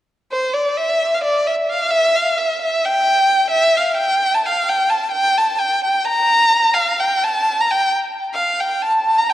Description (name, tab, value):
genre	balkan folk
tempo	free time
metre	none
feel	none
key	unclear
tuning	A4 = 439 Hz
part	warm violin	solo	0.3-9.3 s	C5 to Bb5	-15 LUFS	equal	tape echo
room	wet recital hall reverb, RT60 1.2 s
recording	worn, warbling old tape, cassette tape, warbly pitch drift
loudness	-15 LUFS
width	side -13 dB against mid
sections	0.3-9.3 A section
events	none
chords	none